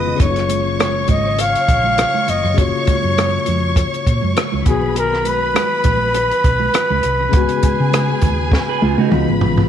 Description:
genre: lush 1970s-style soul.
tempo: 101 BPM.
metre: 4/4.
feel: swing 54% on 16ths.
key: F# major.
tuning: A4 = 440 Hz.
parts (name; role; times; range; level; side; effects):
breathy flugelhorn; melody; 0.0-9.1 s; G#4 to E#5; -19 LUFS; left 1 dB; none.
warm studio violin section; second line; 0.0-9.7 s; G#4 to D#6; -24 LUFS; equal; none.
tine electric piano; accompaniment; 0.0-9.7 s; C#3 to F#4; -23 LUFS; left 9 dB; overdrive, fast stereo tremolo.
hollow-body short-scale fingered electric bass; bass; 0.0-9.6 s; E#1 to C#3; -21 LUFS; equal; none.
congas; percussion; 0.1-9.7 s; none; -27 LUFS; right 13 dB; none.
compact cocktail drum kit; drums; 0.2-9.7 s; hi-hat, kick drum, rim click, snare drum, toms; -18 LUFS; right 1 dB; none.
electric guitar through a small old amp; riff; 8.7-9.3 s; D#4 to B4; -22 LUFS; right 12 dB; none.
room: light reverb, small room ambience.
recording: 1960s-style stereo with parts hard left and right.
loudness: -14 LUFS.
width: side -9 dB against mid.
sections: 0.0-9.7 A section.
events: drum fill 8.5-9.7.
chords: 0.2 F#maj7; 4.7 Bmaj7; 7.3 C#7sus4; 9.1 C#7.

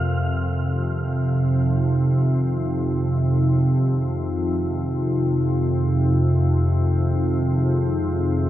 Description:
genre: dark ambient drone.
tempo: free time.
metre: none.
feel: none.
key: F minor.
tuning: A4 = 444 Hz.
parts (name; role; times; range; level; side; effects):
dark analog pad; sustained chords; 0.0-8.5 s; Eb4 to Bb4; -26 LUFS; left 2 dB; chorus, phaser.
organ-like drone; drone; 0.0-8.5 s; F2 to C3; -19 LUFS; right 1 dB; ensemble chorus, built-in reverb.
room: wet echo chamber reverb, RT60 2.6 s.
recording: none.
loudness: -19 LUFS.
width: side -13 dB against mid.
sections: 0.0-8.5 A section.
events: none.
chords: 0.0 Fm.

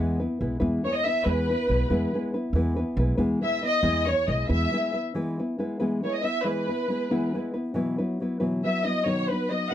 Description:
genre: mexican folk, mariachi.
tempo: 92 BPM (dotted quarters).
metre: 6/8.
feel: straight.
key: E major.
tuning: A4 = 439 Hz.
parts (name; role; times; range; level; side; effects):
nylon-string guitar; accompaniment; 0.0-9.7 s; B2 to B4; -27 LUFS; left 1 dB; none.
upright bass; bass; 0.0-4.7 s; B1 to E2; -27 LUFS; right 1 dB; none.
warm studio violin section; melody; 0.8-9.7 s; B4 to F#5; -26 LUFS; equal; none.
room: little or no reverb.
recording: dry, close 1970s-style studio recording.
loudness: -23 LUFS.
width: side -11 dB against mid.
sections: 0.0-5.1 A section; 5.1-9.7 A section.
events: none.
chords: 0.0 E; 7.8 Bsus4; 9.1 B.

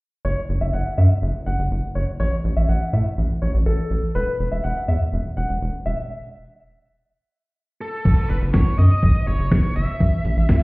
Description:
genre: synth-pop.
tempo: 123 BPM.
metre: 4/4.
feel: straight.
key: F# dorian.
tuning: A4 = 441 Hz.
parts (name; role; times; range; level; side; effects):
clear grand piano; second line; 0.2-5.9 s; A4 to F#5; -28 LUFS; left 1 dB; ping-pong delay.
rubbery square bass; bass; 0.2-10.6 s; E1 to A2; -19 LUFS; equal; none.
smooth overdriven lead guitar; melody; 7.8-10.6 s; A4 to E5; -28 LUFS; equal; ping-pong delay.
clean 12-bit digital drum machine; drums; 8.1-10.6 s; crash cymbal, hi-hat, kick drum, snare drum; -18 LUFS; equal; none.
room: digital ambience.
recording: heard muffled through a wall, stone room reverb, EQ.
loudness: -18 LUFS.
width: side -24 dB against mid.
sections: 0.2-8.1 A section; 8.1-10.6 B section.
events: stop 6.1-8.1.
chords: 0.2 F#5; 2.2 N.C.; 8.1 F#5; 10.0 A5.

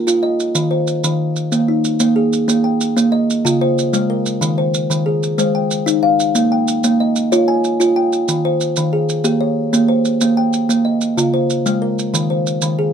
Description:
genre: southern african traditional, mbira-style interlocking cycle.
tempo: 124 BPM (dotted quarters).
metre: 12/8.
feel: straight.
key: unclear.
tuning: A4 = 440 Hz.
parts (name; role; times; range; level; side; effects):
kalimba; arpeggios; 0.0-12.9 s; Db3 to Ab5; -14 LUFS; equal; none.
maracas; percussion; 0.1-12.8 s; none; -22 LUFS; right 7 dB; none.
room: light reverb.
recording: dark, warm production.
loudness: -14 LUFS.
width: side -8 dB against mid.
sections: 0.0-2.5 A section; 2.5-12.9 B section.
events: none.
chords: 0.0 Bb5; 0.6 Eb5; 2.5 Eb/Bb; 3.4 Db; 4.4 Eb5; 5.4 Ab; 6.3 Bbm; 8.3 Eb; 10.2 Eb/Bb; 11.2 Db; 12.1 Eb5.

